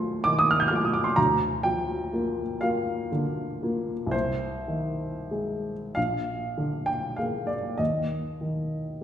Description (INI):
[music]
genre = classical, romantic nocturne for solo piano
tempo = 30-43 BPM (dotted quarters)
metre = 6/8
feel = rubato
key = unclear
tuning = A4 = 441 Hz
[part]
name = dark baby grand piano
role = solo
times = 0.0-9.0 s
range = Bb1 to G6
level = -25 LUFS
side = equal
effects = none
[sound]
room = wet recital hall reverb, RT60 1.4 s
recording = heard from further back in the room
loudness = -25 LUFS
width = side -10 dB against mid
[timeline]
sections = 0.0-9.0 A section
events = none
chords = 0.0 F7/Eb; 1.2 Bb/D; 4.1 Ab/C; 6.0 Bb7; 7.8 N.C.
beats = | 1.17 2.61 | 4.13 5.96 | 7.79